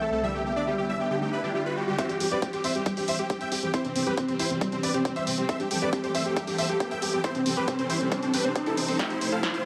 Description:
uplifting trance; 137 BPM; 4/4; straight; C major; A4 = 440 Hz
dense compressed supersaw; melody; 0.0-9.6 s; C4 to G5; -32 LUFS; equal; sidechain pumping, digital delay
warm velvety synth lead; second line; 0.0-1.9 s; E5; -35 LUFS; equal; chorus, dub echo
unison pluck; arpeggios; 0.0-9.6 s; D3 to F5; -36 LUFS; equal; phaser, cassette tape, sidechain pumping, digital delay
riser; sound effects; 0.4-9.7 s; -38 LUFS; equal
dark chamber string section; sustained chords; 0.1-9.7 s; C2 to A4; -35 LUFS; equal; sidechain pumping
warm grand piano; second line; 2.0-9.6 s; C4 to G5; -36 LUFS; equal; sidechain pumping
electronic kick drum; drums; 2.0-9.5 s; -33 LUFS; equal; overdrive, high-pass filter on kick
punchy analog drum machine; drums; 2.0-9.6 s; hi-hat, snare drum; -35 LUFS; equal; high-pass filter on hats, low-pass filter on hats, high-pass filter on snare, low-pass filter on snare, high-pass filter on room, low-pass filter on room
moderate lush hall reverb, RT60 2.0 s; dark, warm production, high-pass filter; -27 LUFS; mono
0.0-2.0 A section; 2.0-9.7 B section
riser 0.4-2.0, 2.0-9.7; build-up 2.0-9.7; filter sweep on synth pluck 2.0-9.7; drum fill 9.0-9.7
0.2 G; 2.0 C; 9.0 Fadd9/C

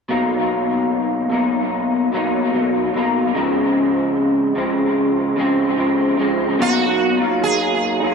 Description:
indie pop; 74 BPM; 4/4; straight; A4 = 440 Hz
electric guitar through a small old amp; accompaniment; 0.1-8.1 s; Cb3 to Eb4; -16 LUFS; left 1 dB; analog chorus, warbly pitch drift, tape echo
sitar; melody; 6.6-8.1 s; Gb4 to Ab4; -19 LUFS; right 6 dB; ensemble chorus, tape echo
wet spring reverb, RT60 1.9 s; echo-heavy mix; -16 LUFS; side -5 dB against mid
0.1-6.6 A section; 6.6-8.1 B section
0.1 Cbmaj7; 3.3 Dbmaj7; 6.6 Cbmaj7

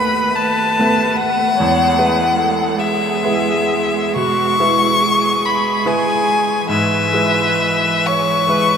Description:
classical, slow romantic movement for piano quartet; 42-50 BPM (dotted quarters); 12/8; rubato; E major; A4 = 444 Hz
clear violin; melody; 0.0-8.8 s; E5 to C#6; -16 LUFS; left 4 dB
rich cello; second line; 0.0-8.8 s; E3 to A3; -23 LUFS; right 5 dB
clear baby grand piano; accompaniment; 0.0-8.8 s; D#2 to B4; -20 LUFS; right 2 dB
rich viola; accompaniment; 0.0-8.8 s; E4 to C#5; -22 LUFS; right 3 dB
wet huge ambient reverb, RT60 8.4 s; in a vast, echoing space; -13 LUFS; side -7 dB against mid
0.0-8.8 A section
0.0 B7/D#; 1.6 E; 6.7 E/G#

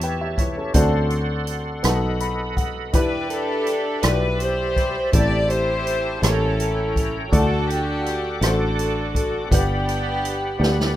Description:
slow gospel; 55 BPM (dotted quarters); 6/8; straight; A4 = 440 Hz
clear baby grand piano; accompaniment; 0.0-11.0 s; G2 to B5; -27 LUFS; left 2 dB
bright tonewheel organ; sustained chords; 0.0-11.0 s; G4 to D6; -29 LUFS; right 1 dB; fast rotary speaker, overdrive, chorus vibrato
fingered electric bass; bass; 0.0-11.0 s; G1 to E2; -24 LUFS; equal
swinging big-band drum kit; drums; 0.0-11.0 s; hi-hat, kick drum, rim click, snare drum; -23 LUFS; equal
clear studio string section; melody; 3.0-11.0 s; B3 to D5; -23 LUFS; equal
little or no reverb; rough home demo mix; -19 LUFS; side -13 dB against mid
0.0-11.0 A section
grand piano fill 1.9-2.9; drum fill 10.6-11.0
0.0 A7; 0.8 D7; 1.9 B7; 2.9 Em7; 5.1 Am7; 6.2 A7b9; 7.3 D; 9.5 Gmaj7

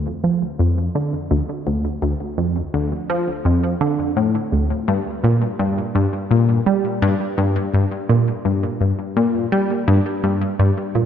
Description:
ambient; 84 BPM; 4/4; straight; G minor; A4 = 440 Hz
tight sequenced synth; solo; 0.0-11.1 s; D2 to G3; -17 LUFS; equal; chorus, tape echo
moderate plate reverb, RT60 2.9 s; echo-heavy mix; -17 LUFS; side -9 dB against mid
0.0-11.1 A section

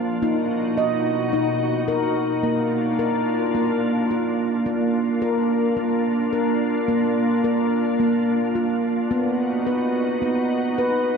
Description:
world meditative, meditative tuned percussion; 108 BPM; 4/4; straight; A4 = 440 Hz
soft additive organ-like pad; sustained chords; 0.0-11.2 s; B2 to F#4; -25 LUFS; equal; ensemble chorus, built-in reverb
handpan; arpeggios; 0.0-11.2 s; Bb3 to D#5; -21 LUFS; equal; tape echo
wet cathedral reverb, RT60 5.8 s; in a vast, echoing space; -19 LUFS; side -5 dB against mid
0.0-4.7 A section; 4.7-11.2 B section
0.2 B; 2.4 Bb; 9.1 B

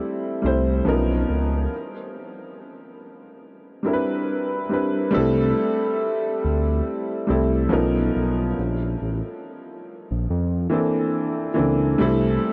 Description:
lo-fi hip hop; 70 BPM; 4/4; swing 55% on 16ths; A4 = 440 Hz
warm upright piano; accompaniment; 0.0-12.5 s; E3 to C5; -24 LUFS; equal; low-pass filter
smooth synth bass; bass; 0.4-12.4 s; A1 to F2; -26 LUFS; equal
wet huge ambient reverb, RT60 7.7 s; dreamy mix soaked in reverb; -22 LUFS; mono
0.0-5.1 A section; 5.1-12.5 A section
break 1.7-5.1
0.0 C6; 0.9 Bmaj9#11; 1.7 Cmaj9; 5.1 C6; 7.7 Bmaj9#11; 8.6 Bbmaj9#11; 12.0 C6

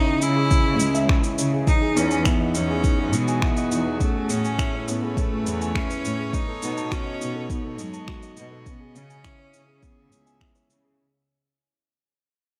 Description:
piano and strings electronica; 103 BPM; 4/4; straight; A4 = 441 Hz
clear cello; melody; 0.0-10.7 s; G#3 to E4; -30 LUFS; equal
rich string quartet; sustained chords; 0.0-11.0 s; C#3 to E5; -35 LUFS; equal; sidechain pumping
dark grand piano; riff; 0.0-11.0 s; C#4 to A5; -30 LUFS; equal; delay
dark symphonic cello section; bass; 0.2-10.9 s; C#2 to C#3; -31 LUFS; equal; sidechain pumping
electronic shaker and finger snaps; drums; 0.2-10.8 s; -34 LUFS; equal
electronic kick drum; drums; 0.5-10.5 s; -25 LUFS; equal
light reverb, studio reverb; -23 LUFS; mono
0.0-11.0 A section
drop 0.0-11.0; fade-out 1.7-11.0
0.0 C#m; 1.7 Emaj7; 4.0 Amaj7; 6.3 B7; 8.7 C#m7

